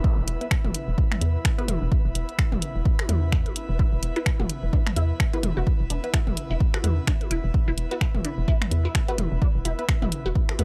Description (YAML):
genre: minimal techno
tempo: 128 BPM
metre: 4/4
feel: swing 58% on 16ths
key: unclear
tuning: A4 = 440 Hz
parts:
  - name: electronic kick drum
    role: drums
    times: 0.0-10.5 s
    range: none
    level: -26 LUFS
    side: equal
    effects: none
  - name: airy breathy pad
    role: texture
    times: 0.0-10.6 s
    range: B3 to B5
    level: -39 LUFS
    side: equal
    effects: chorus, sidechain pumping
  - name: flickering grainy texture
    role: texture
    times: 0.0-10.6 s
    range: B4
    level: -46 LUFS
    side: equal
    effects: built-in reverb, sidechain pumping
  - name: hollow knocking FM bass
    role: bass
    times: 0.2-10.6 s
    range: E1 to E2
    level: -28 LUFS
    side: equal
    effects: sidechain pumping
  - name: punchy analog drum machine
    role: drums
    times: 0.3-10.6 s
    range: finger snaps, hi-hat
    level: -31 LUFS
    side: equal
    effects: none
  - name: filtered dub chord stab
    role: stabs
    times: 0.4-10.6 s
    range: B3 to B4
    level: -37 LUFS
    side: equal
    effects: phaser, tape echo
  - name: electronic toms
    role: percussion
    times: 0.6-10.6 s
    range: none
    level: -35 LUFS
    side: equal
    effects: none
  - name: resonant blip pluck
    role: riff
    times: 3.8-10.6 s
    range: D4 to F#4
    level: -34 LUFS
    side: equal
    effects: phaser, lush chorus, sidechain pumping, tape echo
room: little or no reverb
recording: none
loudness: -24 LUFS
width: mono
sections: 0.0-10.6 A section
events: none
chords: 0.0 E5